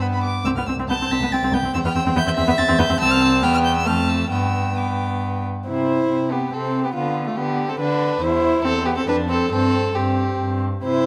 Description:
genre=quick classical-period movement for string quartet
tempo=130-144 BPM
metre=3/4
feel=rubato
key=C major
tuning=A4 = 440 Hz
part: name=warm violin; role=second line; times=0.0-11.1 s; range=F4 to D6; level=-26 LUFS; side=equal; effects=none
part: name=warm viola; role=accompaniment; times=0.0-11.1 s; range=A3 to E4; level=-25 LUFS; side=equal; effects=none
part: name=rich cello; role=bass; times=0.0-11.1 s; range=C2 to D3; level=-26 LUFS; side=equal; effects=none
part: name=rich violin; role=melody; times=0.5-11.1 s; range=A3 to B6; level=-30 LUFS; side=equal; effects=none
room=moderate concert hall reverb, RT60 2.1 s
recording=none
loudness=-20 LUFS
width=mono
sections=0.0-5.7 A section; 5.7-11.1 B section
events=none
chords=0.0 G; 0.5 C5; 1.7 C/E; 3.0 C; 3.9 F; 4.3 G; 5.7 C; 7.0 Dm6; 8.2 C/E; 9.1 Dm/F; 9.5 C5/G

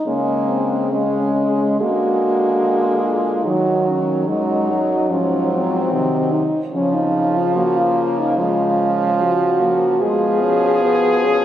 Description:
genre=classical, lyrical piece for horn quartet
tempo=73 BPM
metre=4/4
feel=rubato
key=Db major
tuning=A4 = 441 Hz
part: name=mellow French horn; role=accompaniment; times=0.0-11.4 s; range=Eb3 to Db4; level=-22 LUFS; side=left 1 dB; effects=none
part: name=mellow French horn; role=melody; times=0.1-11.4 s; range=C4 to Ab4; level=-19 LUFS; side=left 2 dB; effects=none
part: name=clear French horn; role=second line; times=0.1-11.4 s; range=F3 to Ab3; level=-21 LUFS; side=right 4 dB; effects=none
part: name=clear French horn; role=bass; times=0.1-11.4 s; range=Gb2 to Eb3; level=-25 LUFS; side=right 1 dB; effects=none
room=moderate cathedral reverb, RT60 4.7 s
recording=recorded on a phone in the room, club reverb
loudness=-15 LUFS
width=side -11 dB against mid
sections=0.1-11.4 A section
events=none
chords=0.1 Db5; 1.8 Bb7/D; 3.5 Ebm; 5.1 Ab7; 6.7 Db; 10.0 Abm6/Cb

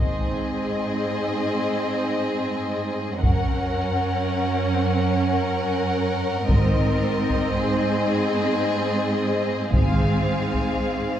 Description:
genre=cinematic, epic orchestral film score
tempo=free time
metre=none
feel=none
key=Ab mixolydian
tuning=A4 = 440 Hz
part: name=warm symphonic violin section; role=melody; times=0.0-11.2 s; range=Eb5 to Gb5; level=-29 LUFS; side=left 4 dB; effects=none
part: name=warm symphonic violin section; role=second line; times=0.0-11.2 s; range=Ab4 to Bb4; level=-29 LUFS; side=left 2 dB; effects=none
part: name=warm symphonic viola section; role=accompaniment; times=0.0-11.2 s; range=C4 to Db4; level=-27 LUFS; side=right 2 dB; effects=none
part: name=warm symphonic cello section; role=bass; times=0.0-11.2 s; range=Gb2 to Ab2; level=-26 LUFS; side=right 2 dB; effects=none
part: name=warm symphonic double bass section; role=bass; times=0.0-0.5, 3.2-3.7, 6.5-7.0, 9.7-10.2 s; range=Gb1 to Ab1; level=-27 LUFS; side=right 1 dB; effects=none
part: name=solo taiko drums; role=drums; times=3.2-10.8 s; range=none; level=-25 LUFS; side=equal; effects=none
part: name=timpani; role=percussion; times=6.5-7.3, 9.7-10.5 s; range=Ab2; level=-27 LUFS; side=equal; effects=none
room=wet recital hall reverb, RT60 1.3 s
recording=recorded in a church or concert hall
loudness=-20 LUFS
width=side -10 dB against mid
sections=0.0-11.2 A section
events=build-up 0.0-11.2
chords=0.0 Ab; 3.2 Gb; 6.5 Ab

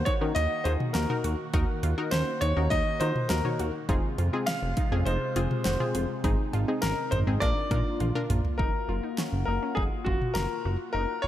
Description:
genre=synth-pop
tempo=102 BPM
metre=4/4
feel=straight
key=Eb dorian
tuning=A4 = 440 Hz
part: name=clear baby grand piano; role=melody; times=0.0-11.3 s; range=Gb4 to F5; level=-31 LUFS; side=left 1 dB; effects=digital delay
part: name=phased analog pad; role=sustained chords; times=0.0-11.3 s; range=C3 to Gb4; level=-36 LUFS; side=left 1 dB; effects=phaser, chorus
part: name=chorused synth bass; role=bass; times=0.0-11.3 s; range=F1 to Eb3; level=-28 LUFS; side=equal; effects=none
part: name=wide unison pluck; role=arpeggios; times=0.1-11.3 s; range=C4 to Gb4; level=-39 LUFS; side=right 3 dB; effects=digital delay
part: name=pop drum kit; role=drums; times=0.1-10.5 s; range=cowbell, hi-hat, kick drum, snare drum, toms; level=-30 LUFS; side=equal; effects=none
part: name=analog pluck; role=accompaniment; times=0.2-8.4 s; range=C4 to Db5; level=-34 LUFS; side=left 3 dB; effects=chorus
room=light reverb, digital ambience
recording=none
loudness=-25 LUFS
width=side -12 dB against mid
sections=0.0-8.6 A section; 8.6-11.3 B section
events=drum fill 8.0-8.6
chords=0.0 Ebm; 3.9 Fm; 6.2 Ab; 7.4 Bb; 8.6 Gbmaj7

